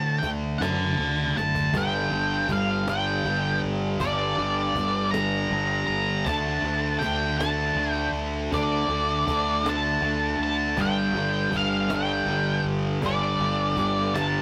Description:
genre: quiet-loud alternative rock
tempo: 53 BPM (dotted quarters)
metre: 6/8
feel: straight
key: unclear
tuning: A4 = 440 Hz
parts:
  - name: octave-fuzz lead guitar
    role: melody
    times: 0.0-14.4 s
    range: D5 to Bb5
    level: -28 LUFS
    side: equal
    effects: distortion
  - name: thick fuzz guitar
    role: riff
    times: 0.0-14.4 s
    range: G2 to D4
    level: -31 LUFS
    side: equal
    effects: distortion
  - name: thick fuzz guitar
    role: riff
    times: 0.0-14.4 s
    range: G2 to D4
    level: -34 LUFS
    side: equal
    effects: distortion
  - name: growling fingered electric bass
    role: bass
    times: 0.0-14.4 s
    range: F#1 to A2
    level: -34 LUFS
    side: equal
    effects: overdrive
  - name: cajon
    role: drums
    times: 0.2-14.3 s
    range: none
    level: -37 LUFS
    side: equal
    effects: none
  - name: distorted electric guitar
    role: riff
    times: 10.8-14.4 s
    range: G2 to G3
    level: -33 LUFS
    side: equal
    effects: distortion
room: light reverb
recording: rough rehearsal-room recording, tube saturation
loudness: -25 LUFS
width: mono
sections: 0.0-1.7 A section; 1.7-14.4 B section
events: drum fill 1.4-1.7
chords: 0.0 D; 1.7 Gm; 6.3 D5; 10.8 G5

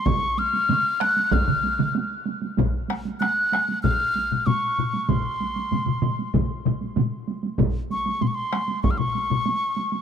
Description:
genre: japanese traditional, taiko drum ensemble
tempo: 96 BPM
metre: 4/4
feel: straight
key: unclear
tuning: A4 = 438 Hz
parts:
  - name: mellow hollow wooden piccolo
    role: melody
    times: 0.0-10.0 s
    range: C6 to Gb6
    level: -24 LUFS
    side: left 1 dB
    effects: none
  - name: solo taiko drums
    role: percussion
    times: 0.1-10.0 s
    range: none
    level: -29 LUFS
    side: right 6 dB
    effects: none
  - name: taiko ensemble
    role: percussion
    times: 0.1-7.1 s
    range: none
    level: -26 LUFS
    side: right 4 dB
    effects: none
  - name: taiko ensemble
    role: percussion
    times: 0.1-9.0 s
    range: none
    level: -27 LUFS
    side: equal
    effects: none
  - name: taiko ensemble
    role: percussion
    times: 2.6-9.5 s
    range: none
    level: -26 LUFS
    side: left 6 dB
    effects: none
room: moderate huge ambient reverb, RT60 3.9 s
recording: none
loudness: -21 LUFS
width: side -8 dB against mid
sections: 0.0-10.0 A section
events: none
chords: none

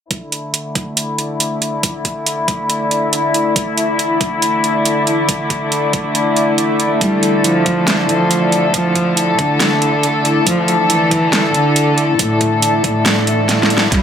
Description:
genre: heavy wobble dubstep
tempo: 139 BPM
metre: 4/4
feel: half-time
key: D minor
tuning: A4 = 440 Hz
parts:
  - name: warm studio string section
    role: sustained chords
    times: 0.1-14.0 s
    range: D3 to A4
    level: -17 LUFS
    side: left 2 dB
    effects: sidechain pumping, low-pass filter
  - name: dubstep drum kit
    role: drums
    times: 0.1-14.0 s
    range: hi-hat, snare drum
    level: -17 LUFS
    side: right 2 dB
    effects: none
  - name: electronic kick drum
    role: drums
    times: 0.1-14.0 s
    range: none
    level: -21 LUFS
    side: equal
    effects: high-pass filter on kick
  - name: granular cloud pad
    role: texture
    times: 1.2-14.0 s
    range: E4 to E5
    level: -20 LUFS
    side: left 1 dB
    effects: built-in reverb, sidechain pumping
  - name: dark cello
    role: melody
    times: 7.0-14.0 s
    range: A2 to G3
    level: -17 LUFS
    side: right 1 dB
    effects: dub echo
  - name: riser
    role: sound effects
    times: 13.9-14.0 s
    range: none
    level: barely audible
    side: none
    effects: none
room: moderate plate reverb, RT60 1.8 s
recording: none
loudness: -13 LUFS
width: side -8 dB against mid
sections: 0.1-13.9 A section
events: filter sweep on string section 0.1-13.9; kick drops out 13.1-13.9; drum fill 13.5-13.9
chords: 0.1 Dsus2

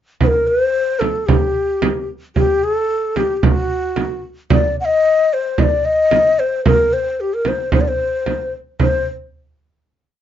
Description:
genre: Turkish makam ensemble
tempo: 112 BPM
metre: 4/4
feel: straight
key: C makam nikriz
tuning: A4 = 440 Hz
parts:
  - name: breathy ney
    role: melody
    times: 0.2-9.1 s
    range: F#4 to F#5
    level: -16 LUFS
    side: left 2 dB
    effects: none
  - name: frame drum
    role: percussion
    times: 0.2-9.0 s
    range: none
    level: -17 LUFS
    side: right 3 dB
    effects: none
room: moderate small room reverb, RT60 0.5 s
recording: nothing above 7.5 kHz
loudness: -14 LUFS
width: side -10 dB against mid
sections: 0.2-8.8 A section; 8.8-10.2 final note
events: none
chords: none

